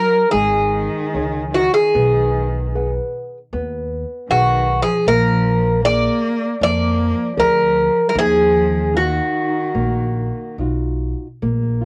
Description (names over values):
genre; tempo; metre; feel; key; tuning
fado-style ballad; 76 BPM; 4/4; rubato; Eb minor; A4 = 440 Hz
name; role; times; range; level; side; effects
Greek bouzouki; melody; 0.0-10.6 s; Gb4 to D5; -19 LUFS; equal; cassette tape
rich cello; second line; 0.0-10.6 s; Eb3 to Bb3; -26 LUFS; equal; cassette tape
nylon-string guitar; accompaniment; 0.0-11.8 s; Eb3 to Gb5; -28 LUFS; equal; cassette tape
upright bass; bass; 0.3-11.8 s; Ab1 to F2; -24 LUFS; equal; none
room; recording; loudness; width
little or no reverb; home recording on cassette; -18 LUFS; mono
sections
0.0-11.4 A section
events
none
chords
0.0 Dbsus2; 1.9 Abm7/Cb; 5.1 Bb7; 8.1 Ebmadd9